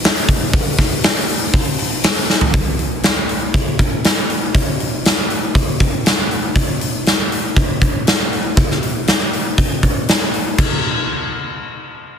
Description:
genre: rock.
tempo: 119 BPM.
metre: 4/4.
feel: straight.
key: none.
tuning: none.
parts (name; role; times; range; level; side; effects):
big rock drum kit; drums; 0.0-10.7 s; crash cymbal, hi-hat, kick drum, snare drum, toms; -14 LUFS; equal; none.
room: light reverb.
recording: dense, heavily limited modern master.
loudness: -14 LUFS.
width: side -7 dB against mid.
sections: 0.0-2.5 A section; 2.5-10.6 B section; 10.6-12.2 C section.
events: drum fill 2.3.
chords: none.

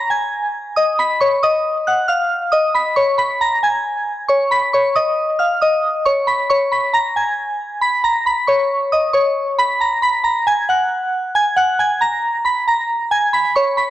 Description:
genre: hip hop.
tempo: 136 BPM.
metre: 4/4.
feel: half-time.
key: unclear.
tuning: A4 = 440 Hz.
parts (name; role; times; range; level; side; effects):
soft synth bell; solo; 0.0-13.9 s; Db5 to Cb7; -14 LUFS; equal; chorus.
room: little or no reverb.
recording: dry, gritty hardware recording.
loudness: -14 LUFS.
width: side -13 dB against mid.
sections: 0.0-4.3 A section; 4.3-13.9 B section.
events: none.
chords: 0.0 N.C.; 4.3 Db5; 7.8 B5; 11.3 Abm.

